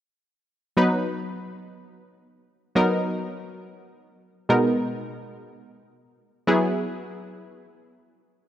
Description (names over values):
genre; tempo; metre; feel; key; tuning
pop; free time; none; none; B major; A4 = 440 Hz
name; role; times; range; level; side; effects
analog pluck; accompaniment; 0.8-8.4 s; B2 to B4; -22 LUFS; equal; chorus
room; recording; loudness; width
wet lush hall reverb, RT60 2.4 s; worn, warbling old tape, cassette tape, warbly pitch drift; -22 LUFS; side -11 dB against mid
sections
0.8-8.5 A section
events
none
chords
0.8 B; 4.5 G#madd9/B; 6.5 Eadd9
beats
free time